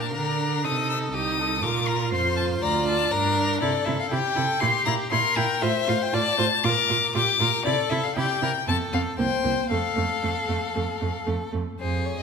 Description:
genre	quick classical-period movement for string quartet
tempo	119 BPM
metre	4/4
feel	straight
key	F major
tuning	A4 = 441 Hz
part	rich violin	melody	0.0-12.2 s	C5 to E6	-25 LUFS	left 6 dB	none
part	clear violin	second line	0.0-12.2 s	G4 to D5	-29 LUFS	left 3 dB	none
part	rich viola	accompaniment	0.0-11.6 s	A3 to F4	-30 LUFS	right 3 dB	none
part	rich cello	bass	0.0-12.2 s	C2 to D3	-28 LUFS	right 4 dB	none
room	wet concert hall reverb, RT60 2.1 s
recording	minimal, uncompressed stereo recording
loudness	-22 LUFS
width	side -6 dB against mid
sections	0.0-11.8 A section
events	none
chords	0.0 Bb; 0.6 Adim/C; 1.6 Bb; 3.6 C; 4.6 C7/Bb; 5.6 F/A; 6.6 Bb6; 7.7 C; 8.7 F; 9.2 C5; 9.7 F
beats	0.14 0.64 1.14 | 1.63 2.13 2.62 3.12 | 3.61 4.11 4.62 5.12 | 5.63 6.13 6.64 7.15 | 7.65 8.16 8.68 9.19 | 9.71 10.23 10.75 11.27 | 11.80

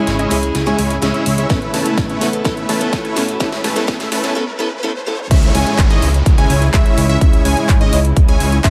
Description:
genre	EDM, festival progressive house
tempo	126 BPM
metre	4/4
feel	straight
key	C# minor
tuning	A4 = 438 Hz
part	picked steel-string acoustic guitar	accompaniment	0.0-5.2 s	G#3 to A4	-24 LUFS	equal	sidechain pumping, dub echo
part	warm chamber string section	sustained chords	0.0-8.7 s	C#3 to E4	-28 LUFS	equal	sidechain pumping
part	dense compressed supersaw	riff	0.0-8.7 s	G#3 to A5	-22 LUFS	equal	sidechain pumping, low-pass filter, dub echo
part	riser and downlifter	sound effects	1.3-8.7 s	none	-32 LUFS	equal	none
part	fat analog bass	bass	0.1-8.7 s	G#1 to A2	-21 LUFS	equal	sidechain pumping
part	big-room dance drum kit	drums	0.1-8.7 s	crash cymbal, handclaps, hi-hat, snare drum, toms	-26 LUFS	equal	high-pass filter on snare, high-pass filter on toms, high-pass filter on hats, high-pass filter on cymbals, high-pass filter on room
part	electronic kick drum	drums	1.5-8.7 s	none	-16 LUFS	equal	none
part	plucky unison lead	arpeggios	5.3-8.7 s	D#5 to G#5	-25 LUFS	equal	sidechain pumping, dub echo
room	light reverb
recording	high-pass filter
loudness	-15 LUFS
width	mono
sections	0.0-5.3 A section; 5.3-8.7 B section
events	build-up 0.0-5.3; drum fill 0.0-4.4, 5.1; filter sweep 0.0-5.3; break 4.4-5.3; drop 5.3-8.7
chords	0.0 C#m; 1.5 Aadd9; 5.3 C#m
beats	0.07 0.55 1.02 | 1.50 1.98 2.45 2.93 | 3.40 3.88 4.36 4.83 | 5.31 5.79 6.26 6.74 | 7.21 7.69 8.17 8.64

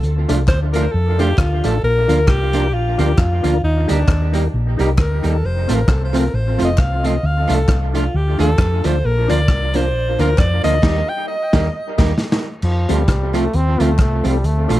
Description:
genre	ska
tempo	133 BPM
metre	4/4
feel	swing 57% on 8ths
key	F mixolydian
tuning	A4 = 441 Hz
part	clear alto saxophone	melody	0.0-11.9 s	D4 to G5	-22 LUFS	equal	analog delay
part	hollow-body short-scale fingered electric bass	bass	0.0-14.8 s	F1 to F2	-18 LUFS	equal	none
part	crunchy breakbeat drum kit	drums	0.0-14.8 s	crash cymbal, hi-hat, kick drum, rim click, snare drum	-18 LUFS	equal	none
part	archtop guitar, miked and amplified	accompaniment	0.3-14.8 s	F3 to G4	-23 LUFS	right 5 dB	analog delay
part	percussive tonewheel organ	stabs	0.3-14.8 s	C4 to Bb4	-26 LUFS	left 4 dB	chorus vibrato, fast rotary speaker, analog delay
part	group handclap	percussion	0.5-14.1 s	none	-36 LUFS	left 7 dB	none
part	bright trombone	melody	12.6-14.8 s	F3 to C4	-22 LUFS	equal	analog delay
room	light reverb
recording	dark, warm production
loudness	-14 LUFS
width	side -15 dB against mid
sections	0.0-12.6 A section; 12.6-14.8 B section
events	alto saxophone solo 0.0-12.6; band accent 10.8-12.6; drum fill 11.7-12.6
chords	0.0 Dm; 1.8 Bb; 3.6 Eb; 5.4 F; 7.2 Dm; 9.0 Bb; 10.8 Eb; 12.6 F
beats	| 0.03 0.48 0.93 1.38 | 1.83 2.28 2.73 3.18 | 3.63 4.08 4.53 4.98 | 5.43 5.88 6.33 6.79 | 7.24 7.68 8.13 8.59 | 9.04 9.48 9.93 10.38 | 10.83 11.28 11.73 12.18 | 12.63 13.08 13.53 13.98 | 14.44

